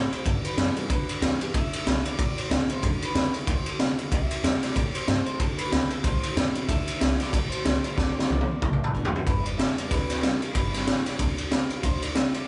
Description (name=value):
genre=rockabilly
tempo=186 BPM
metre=4/4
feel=swing 58% on 8ths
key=G major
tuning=A4 = 442 Hz
part: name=electric guitar through a small old amp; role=melody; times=0.0-12.5 s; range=A4 to E5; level=-39 LUFS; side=equal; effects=none
part: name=picked steel-string acoustic guitar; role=accompaniment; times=0.0-12.5 s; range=G2 to G4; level=-39 LUFS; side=equal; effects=none
part: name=clean electric guitar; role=riff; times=0.0-9.2 s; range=G2 to B3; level=-41 LUFS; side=equal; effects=none
part: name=upright bass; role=bass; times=0.0-12.4 s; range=G1 to A2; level=-34 LUFS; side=equal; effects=none
part: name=raw garage drum kit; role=drums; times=0.1-12.4 s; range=kick drum, ride cymbal, snare drum, toms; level=-27 LUFS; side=equal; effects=none
room=light reverb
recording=band playing live in one room, nothing above 11.0 kHz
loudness=-26 LUFS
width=mono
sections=0.0-9.3 A section; 9.3-12.5 B section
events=drum fill 8.0-9.3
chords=0.3 G; 1.5 D7; 4.1 C; 5.4 D7; 9.3 G; 11.8 D7